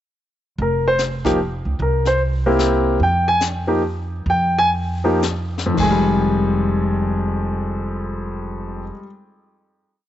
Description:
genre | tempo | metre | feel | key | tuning
jazz piano trio | 104-149 BPM | 3/4 | swing 65% on 8ths | F minor | A4 = 440 Hz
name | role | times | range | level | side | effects
warm concert grand piano | melody | 0.6-9.1 s | F2 to Ab5 | -18 LUFS | left 1 dB | none
upright bass | bass | 0.6-8.9 s | F1 to F2 | -23 LUFS | right 1 dB | none
jazz brush drum kit | drums | 0.6-6.4 s | brushed snare drum, crash cymbal, hi-hat, kick drum, snare drum | -30 LUFS | left 4 dB | none
room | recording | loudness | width
light reverb | 1960s-style stereo, nothing above 7.9 kHz | -17 LUFS | side -12 dB against mid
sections
0.6-5.8 A section; 5.8-9.2 final chord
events
slowing down 3.0-5.8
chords
0.6 N.C.; 1.8 C7; 3.0 Fsus2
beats
| 0.58 0.98 1.38 | 1.79 2.19 2.59 | 3.00 3.40 3.82 | 4.26 4.72 5.22 | 5.77 6.35 6.93 | 7.51 8.09 8.67

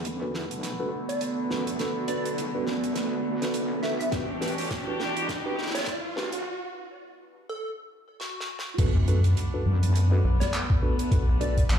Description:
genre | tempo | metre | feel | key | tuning
glitch hop | 103 BPM | 4/4 | swing 57% on 16ths | B minor | A4 = 439 Hz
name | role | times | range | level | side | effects
rich chamber string section | sustained chords | 0.0-11.8 s | D3 to G4 | -34 LUFS | left 1 dB | sidechain pumping, low-pass filter
wobble bass | bass | 0.0-11.8 s | E1 to F#2 | -28 LUFS | equal | chorus, tube saturation, high-pass filter
damped 70s drum kit | drums | 0.0-11.8 s | crash cymbal, handclaps, hi-hat, snare drum | -35 LUFS | right 2 dB | high-pass filter on hats, studio reverb, high-pass filter on cymbals, high-pass filter on snare, high-pass filter on room
riser and impact | sound effects | 1.9-11.1 s | none | -35 LUFS | equal | none
deep dark ambient pad | texture | 0.0-11.8 s | B3 to D5 | -34 LUFS | right 2 dB | chorus, built-in reverb, sidechain pumping
mellow tine electric piano | stabs | 0.2-11.6 s | D4 to B4 | -34 LUFS | right 1 dB | medium stereo tremolo, sidechain pumping, tape echo
plucky unison lead | melody | 1.1-11.6 s | F#4 to E5 | -36 LUFS | equal | phaser, tape echo
electronic kick drum | drums | 4.1-11.7 s | none | -25 LUFS | equal | studio reverb
rubbery square bass | bass | 9.0-11.7 s | B1 to F#2 | -22 LUFS | equal | none
room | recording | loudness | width
moderate small room reverb, RT60 0.5 s | played on a big sound system in a bare room, large studio reverb, high-pass filter | -24 LUFS | side -8 dB against mid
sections
0.0-8.8 A section; 8.8-11.8 B section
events
build-up 0.0-8.8; drum fill 0.0-6.5, 8.2-8.8; filter sweep 0.0-8.8; riser 1.9-6.5; break 6.5-8.8; drop 8.8-11.8; impact 8.8-11.1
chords
0.0 Bm7; 4.1 Em9; 8.8 Bm7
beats
0.05 0.63 1.21 | 1.79 2.38 2.96 3.54 | 4.13 4.71 5.29 5.87 | 6.46 7.04 7.62 8.20 | 8.79 9.37 9.95 10.53 | 11.12 11.70

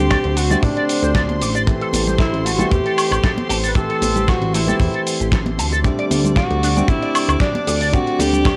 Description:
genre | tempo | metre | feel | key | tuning
nu-disco, nu disco | 115 BPM | 4/4 | straight | A dorian | A4 = 437 Hz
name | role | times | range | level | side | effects
breathy tenor saxophone | melody | 0.0-8.6 s | D4 to B4 | -25 LUFS | equal | cassette tape
warm grand piano | accompaniment | 0.0-8.6 s | D3 to G4 | -25 LUFS | equal | sidechain pumping, cassette tape
bright chamber string section | sustained chords | 0.0-8.6 s | C5 to D6 | -32 LUFS | equal | sidechain pumping, cassette tape
electric guitar with an envelope filter | riff | 0.0-7.9 s | A3 to D6 | -28 LUFS | equal | subtle chorus, cassette tape
chorused synth bass | bass | 0.0-8.5 s | A1 to E2 | -23 LUFS | equal | tube saturation, sidechain pumping
dusty soul sampler-style drum kit | drums | 0.1-8.6 s | cabasa, hi-hat, snare drum, woodblock | -26 LUFS | equal | cassette tape
kick drum | drums | 0.1-8.6 s | none | -21 LUFS | equal | cassette tape
congas and bongos | percussion | 0.5-8.4 s | none | -28 LUFS | equal | none
room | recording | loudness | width
moderate spring reverb, RT60 2.2 s | home recording on cassette | -18 LUFS | mono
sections
0.0-8.6 A section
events
none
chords
0.0 D7sus4; 1.7 Am7; 5.8 D7sus4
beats
0.10 0.63 1.15 | 1.67 2.19 2.71 3.24 | 3.76 4.28 4.80 5.32 | 5.84 6.37 6.89 7.41 | 7.93 8.45

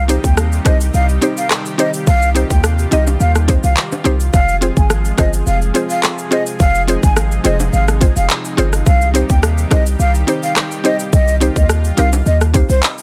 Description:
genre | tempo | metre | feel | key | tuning
dancehall | 106 BPM | 4/4 | straight | unclear | A4 = 440 Hz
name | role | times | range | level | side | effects
breathy mellow jazz flute | melody | 0.0-12.8 s | C5 to Ab5 | -22 LUFS | equal | delay
lush unison pad | sustained chords | 0.0-13.0 s | C3 to Ab4 | -27 LUFS | equal | chorus, sidechain pumping
warm 808-style bass | bass | 0.0-12.8 s | F1 to Eb2 | -17 LUFS | equal | none
mallet-like synth pluck | accompaniment | 0.1-12.7 s | C4 to Eb5 | -20 LUFS | equal | chorus
island pop drum kit | drums | 0.1-13.0 s | handclaps, hi-hat, kick drum, rim click, shaker | -18 LUFS | equal | none
tube shaker and timbales | percussion | 0.1-13.0 s | none | -32 LUFS | equal | none
room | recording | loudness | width
little or no reverb | none | -14 LUFS | mono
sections
0.0-13.0 A section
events
none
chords
0.0 Cm; 4.3 Fm; 8.9 Cm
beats
0.37 0.94 1.51 | 2.07 2.64 3.20 3.77 | 4.34 4.90 5.47 6.04 | 6.60 7.17 7.73 8.30 | 8.87 9.43 10.00 10.56 | 11.13 11.70 12.26 12.83

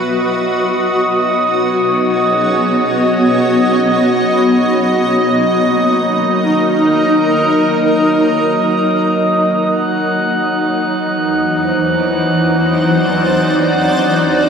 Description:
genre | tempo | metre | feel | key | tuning
ambient | free time | none | none | B major | A4 = 440 Hz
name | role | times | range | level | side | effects
granular cloud pad | sustained chords | 0.0-14.5 s | E3 to D#5 | -14 LUFS | left 1 dB | built-in reverb
bowed-like drone | drone | 0.0-14.5 s | B2 to F#4 | -20 LUFS | right 1 dB | built-in reverb
glass harmonica | texture | 0.1-14.5 s | D#5 to F#6 | -17 LUFS | right 1 dB | none
vibraphone with soft mallets | arpeggios | 2.3-14.5 s | A#3 to B5 | -25 LUFS | left 2 dB | ping-pong delay
room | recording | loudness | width
wet huge ambient reverb, RT60 8.2 s | none | -11 LUFS | side -6 dB against mid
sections
0.1-14.5 A section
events
fade-in on vibraphone 0.1-14.5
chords
0.1 B; 4.9 D#5; 9.7 Cadd9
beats
free time

